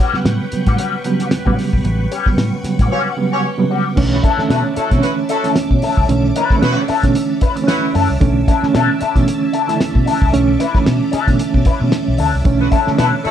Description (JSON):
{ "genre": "funk", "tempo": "113 BPM", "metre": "4/4", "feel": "swing 56% on 16ths", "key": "B minor", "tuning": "A4 = 440 Hz", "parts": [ { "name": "electric guitar with an envelope filter", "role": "accompaniment", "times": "0.0-13.3 s", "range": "G3 to B4", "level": "-20 LUFS", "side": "left 9 dB", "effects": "wah" }, { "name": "string machine, full ensemble", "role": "sustained chords", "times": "0.0-13.3 s", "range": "C#4 to D6", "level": "-25 LUFS", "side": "right 3 dB", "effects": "phaser, ensemble chorus" }, { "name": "reed electric piano", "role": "stabs", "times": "0.1-13.3 s", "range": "C3 to E4", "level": "-18 LUFS", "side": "right 4 dB", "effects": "fast tremolo" }, { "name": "vintage muted fingered electric bass", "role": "bass", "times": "0.1-13.3 s", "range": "A1 to B2", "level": "-18 LUFS", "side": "equal", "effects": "none" }, { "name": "cloth-damped thuddy drum kit", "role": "drums", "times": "0.1-13.3 s", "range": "crash cymbal, hi-hat, kick drum, snare drum", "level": "-17 LUFS", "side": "equal", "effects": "none" }, { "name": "warm horn section", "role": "second line", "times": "2.9-7.9, 12.6-13.3 s", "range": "A3 to C#5", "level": "-22 LUFS", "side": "equal", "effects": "none" } ], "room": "light reverb", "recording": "dark, warm production", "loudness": "-13 LUFS", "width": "side -10 dB against mid", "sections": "0.0-4.0 A section; 4.0-13.3 B section", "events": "band accent 1.9-4.0", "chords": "0.0 A13; 4.0 Bm11" }